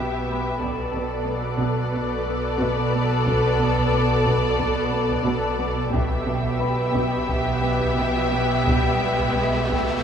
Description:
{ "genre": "cinematic, suspense film score", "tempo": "90 BPM", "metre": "4/4", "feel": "straight", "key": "B minor", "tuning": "A4 = 440 Hz", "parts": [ { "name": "muted studio violin section", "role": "melody", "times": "0.0-10.0 s", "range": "D5 to E5", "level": "-30 LUFS", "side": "left 2 dB", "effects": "none" }, { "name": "muted studio violin section", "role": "second line", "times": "0.0-10.0 s", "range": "G4 to A4", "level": "-27 LUFS", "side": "left 2 dB", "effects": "none" }, { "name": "muted symphonic viola section", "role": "accompaniment", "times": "0.0-10.0 s", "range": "B3", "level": "-30 LUFS", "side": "left 1 dB", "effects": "none" }, { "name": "bubbling stepped-filter texture", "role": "sustained chords", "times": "0.0-10.0 s", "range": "G4 to E5", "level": "-30 LUFS", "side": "equal", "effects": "chorus, built-in reverb" }, { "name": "muted studio cello section", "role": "riff", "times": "0.0-9.9 s", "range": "B2 to B3", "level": "-29 LUFS", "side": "right 3 dB", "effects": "none" }, { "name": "muted studio cello section", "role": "bass", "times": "0.0-10.0 s", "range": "B2", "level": "-28 LUFS", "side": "right 2 dB", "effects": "none" }, { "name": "muted studio double bass section", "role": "bass", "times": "0.0-10.0 s", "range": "B1", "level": "-28 LUFS", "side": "right 2 dB", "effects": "none" }, { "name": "celesta", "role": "texture", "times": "0.0-10.0 s", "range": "B4 to B5", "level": "-35 LUFS", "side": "left 4 dB", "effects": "none" }, { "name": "taiko ensemble", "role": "drums", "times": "0.6-10.0 s", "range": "none", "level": "-30 LUFS", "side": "left 1 dB", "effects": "none" }, { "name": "muted studio violin section", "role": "texture", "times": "0.6-10.0 s", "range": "B5 to F#6", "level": "-37 LUFS", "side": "left 4 dB", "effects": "none" }, { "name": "riser", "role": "sound effects", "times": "7.8-10.0 s", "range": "none", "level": "-32 LUFS", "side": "left 1 dB", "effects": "none" } ], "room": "moderate scoring stage reverb, RT60 1.9 s", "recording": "minimal, uncompressed stereo recording", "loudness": "-20 LUFS", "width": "side -8 dB against mid", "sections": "0.0-10.0 A section", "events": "riser 7.8-10.0", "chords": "0.0 Em/B; 0.6 Bm7; 5.9 Em/B" }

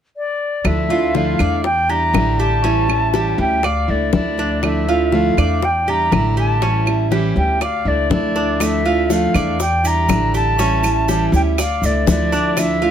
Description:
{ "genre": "latin, Cuban son and guajira", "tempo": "121 BPM", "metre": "4/4", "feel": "straight", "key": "D harmonic minor", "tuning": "A4 = 440 Hz", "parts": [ { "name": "silver concert flute", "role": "melody", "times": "0.2-12.9 s", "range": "D5 to Bb5", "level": "-20 LUFS", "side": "left 1 dB", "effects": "none" }, { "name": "picked plugged-in steel-string acoustic guitar", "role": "accompaniment", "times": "0.6-12.9 s", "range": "D3 to E4", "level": "-21 LUFS", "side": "right 1 dB", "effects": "none" }, { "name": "upright bass", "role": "bass", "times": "0.6-12.9 s", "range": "A1 to E2", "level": "-20 LUFS", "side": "equal", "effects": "none" }, { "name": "bongos", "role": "percussion", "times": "0.6-12.8 s", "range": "none", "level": "-22 LUFS", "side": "left 6 dB", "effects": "none" }, { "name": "claves", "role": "percussion", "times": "0.7-12.8 s", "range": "none", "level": "-27 LUFS", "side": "right 5 dB", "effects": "none" }, { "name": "Cuban tres", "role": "arpeggios", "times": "0.9-12.9 s", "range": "C#4 to D5", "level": "-23 LUFS", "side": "right 4 dB", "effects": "none" }, { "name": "maracas", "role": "percussion", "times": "8.6-12.8 s", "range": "none", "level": "-31 LUFS", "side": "right 4 dB", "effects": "none" } ], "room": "light reverb", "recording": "none", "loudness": "-15 LUFS", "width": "side -9 dB against mid", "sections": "0.7-12.9 A section", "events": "none", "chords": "0.0 N.C.; 0.7 Dmadd9; 1.6 Em7b5; 2.6 A7; 3.6 Dmadd9; 5.6 Em7b5; 6.6 A7; 7.6 Dmadd9; 9.6 Em7b5; 10.6 A7; 11.6 Dmadd9" }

